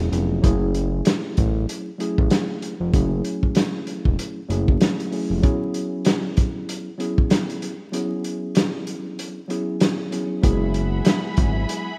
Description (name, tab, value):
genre	hip hop, boom-bap hip-hop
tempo	96 BPM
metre	4/4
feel	swing 58% on 16ths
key	unclear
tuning	A4 = 440 Hz
part	mellow tine electric piano	accompaniment	0.0-11.9 s	F#3 to G#4	-28 LUFS	equal	cassette tape, high-pass filter, low-pass filter
part	fat analog bass	bass	0.0-5.4, 10.4-11.7 s	E1 to A1	-25 LUFS	equal	none
part	vintage drum kit	drums	0.0-11.9 s	hi-hat, kick drum, snare drum	-23 LUFS	equal	none
part	warm studio string section	sustained chords	10.4-12.0 s	G#4 to B5	-34 LUFS	equal	high-pass filter, low-pass filter
room	light reverb, small room ambience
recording	rough home demo mix, vinyl crackle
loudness	-22 LUFS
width	mono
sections	0.0-10.4 A section; 10.4-12.0 B section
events	break 7.9-10.4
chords	0.4 F#m7; 5.4 E69/F#; 10.4 Eadd9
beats	| 0.43 1.06 1.68 2.31 | 2.93 3.56 4.18 4.81 | 5.43 6.06 6.68 7.31 | 7.93 8.56 9.18 9.81 | 10.43 11.06 11.68